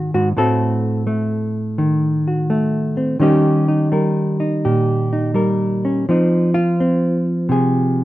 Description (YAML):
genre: solo jazz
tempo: 84 BPM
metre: 4/4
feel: swing 67% on 8ths, rubato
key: unclear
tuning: A4 = 436 Hz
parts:
  - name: hollow-body jazz guitar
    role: solo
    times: 0.0-8.0 s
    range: Ab2 to Bb4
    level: -15 LUFS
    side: equal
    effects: none
room: light reverb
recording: dark, warm production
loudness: -15 LUFS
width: side -15 dB against mid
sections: 0.0-8.0 A section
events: none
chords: 0.4 Adim7; 3.2 Eb7; 6.1 Fm7